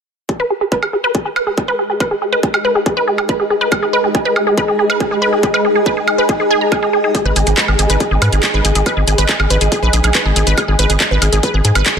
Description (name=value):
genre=psychedelic trance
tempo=140 BPM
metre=4/4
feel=straight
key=G# minor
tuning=A4 = 441 Hz
part: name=wide unison pluck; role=riff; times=0.3-12.0 s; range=G#4 to A#5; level=-16 LUFS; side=right 1 dB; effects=auto-pan, sidechain pumping, dub echo
part: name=electronic kick drum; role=drums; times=0.3-11.9 s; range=none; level=-19 LUFS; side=equal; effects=high-pass filter on kick, high-pass filter on room
part: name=granular cloud pad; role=texture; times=1.8-12.0 s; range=G#4 to G#5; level=-19 LUFS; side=equal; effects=built-in reverb, sidechain pumping
part: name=drum and bass drum kit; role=drums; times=0.8-11.9 s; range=handclaps, hi-hat, woodblock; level=-18 LUFS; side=right 1 dB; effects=none
part: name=round analog bass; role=bass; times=7.3-12.0 s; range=G#1 to G#2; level=-14 LUFS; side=equal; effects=none
room=moderate lush hall reverb, RT60 2.0 s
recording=dense, heavily limited modern master, lossy compression artefacts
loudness=-12 LUFS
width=side -7 dB against mid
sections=0.3-12.0 A section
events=filter sweep on synth arpeggio sound 0.3-12.0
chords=0.3 G#5